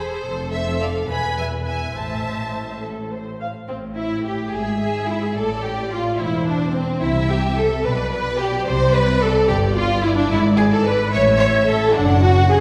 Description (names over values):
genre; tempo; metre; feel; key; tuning
quick classical-period movement for string orchestra; 72 BPM (dotted quarters); 6/8; straight; A minor; A4 = 440 Hz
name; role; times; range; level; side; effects
clear studio violin section; melody; 0.0-12.6 s; C5 to B5; -31 LUFS; equal; none
rich studio violin section; second line; 0.0-12.6 s; C4 to G#5; -25 LUFS; equal; none
warm studio viola section; accompaniment; 0.0-12.6 s; C4 to F5; -26 LUFS; equal; none
dark studio cello section; bass; 0.0-12.6 s; E2 to C3; -27 LUFS; equal; none
rich studio double bass section; bass; 0.0-12.6 s; E1 to C2; -26 LUFS; equal; none
room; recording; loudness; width
wet recital hall reverb, RT60 1.7 s; heard from further back in the room; -19 LUFS; mono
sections
0.0-3.7 A section; 3.7-12.6 B section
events
none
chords
0.2 F; 1.1 E5; 1.9 Am; 3.7 A7(no3); 4.5 E/G#; 5.4 Am; 7.0 C; 7.8 G/B; 8.7 C5; 10.3 E7/G#; 11.1 A5; 11.9 D/F#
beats
| 0.25 1.09 | 1.95 2.82 | 3.68 4.53 | 5.36 6.19 | 7.01 7.84 | 8.66 9.48 | 10.30 11.12 | 11.95